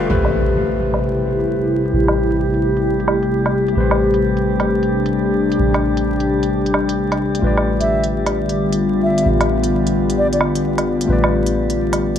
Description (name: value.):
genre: future garage.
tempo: 131 BPM.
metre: 4/4.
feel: swing 66% on 16ths.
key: unclear.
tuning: A4 = 442 Hz.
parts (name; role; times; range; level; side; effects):
overdriven tine electric piano; accompaniment; 0.0-12.2 s; A3 to F5; -24 LUFS; left 3 dB; digital delay.
airy breathy pad; sustained chords; 0.0-12.2 s; C3 to G4; -18 LUFS; equal; chorus.
soft 808-style bass; bass; 0.0-12.2 s; A1; -23 LUFS; equal; tube saturation.
impact; sound effects; 0.1-1.9 s; none; -25 LUFS; equal; none.
drifting glass-harmonics texture; texture; 1.1-12.2 s; G3 to G4; -24 LUFS; left 4 dB; chorus, built-in reverb.
electronic woodblock and hi-hat; drums; 0.2-12.2 s; none; -22 LUFS; right 2 dB; low-pass filter on hats, low-pass filter on perc, low-pass filter on snare.
baroque flute; melody; 7.8-10.4 s; D5 to E5; -22 LUFS; equal; ping-pong delay.
room: moderate lush hall reverb, RT60 1.7 s, digital ambience.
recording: bright 1980s-style digital production, vinyl crackle.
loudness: -15 LUFS.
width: side -9 dB against mid.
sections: 0.1-12.2 A section.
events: impact 0.1-1.9; filter sweep on drum 0.1-12.2.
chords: 0.1 Am9; 7.4 G7/A.